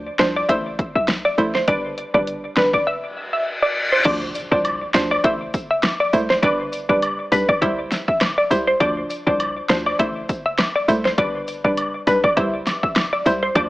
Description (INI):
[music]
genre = dancehall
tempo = 101 BPM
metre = 4/4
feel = swing 56% on 16ths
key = A minor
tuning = A4 = 440 Hz
[part]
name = hollow square pluck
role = accompaniment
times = 0.0-13.7 s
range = F3 to C5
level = -23 LUFS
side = right 1 dB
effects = chorus
[part]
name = short 808-style bass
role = bass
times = 0.0-13.7 s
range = G1 to D2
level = -26 LUFS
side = equal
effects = none
[part]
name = glassy wavetable pluck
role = melody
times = 0.2-13.7 s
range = B4 to E5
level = -21 LUFS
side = equal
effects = chorus, digital delay
[part]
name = deep house drum kit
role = drums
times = 0.2-13.7 s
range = crash cymbal, hi-hat, kick drum, rim click, snare drum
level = -23 LUFS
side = equal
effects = overdrive
[part]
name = reverse cymbal and impact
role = sound effects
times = 3.2-6.4 s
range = none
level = -23 LUFS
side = left 2 dB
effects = none
[part]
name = woodblock and cabasa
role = percussion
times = 4.0-13.7 s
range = none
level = -27 LUFS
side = equal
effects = none
[sound]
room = light reverb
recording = AM radio sound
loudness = -17 LUFS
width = side -18 dB against mid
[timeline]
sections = 0.0-4.1 A section; 4.1-13.7 B section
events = drums muted 2.9-4.1; reverse cymbal 3.2-4.1; impact 4.1-6.4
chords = 0.5 Am; 1.7 G; 2.9 N.C.; 4.1 Dm7; 5.2 Am; 6.4 G; 7.6 C; 8.8 Dm7; 10.0 Am; 11.2 G; 12.4 C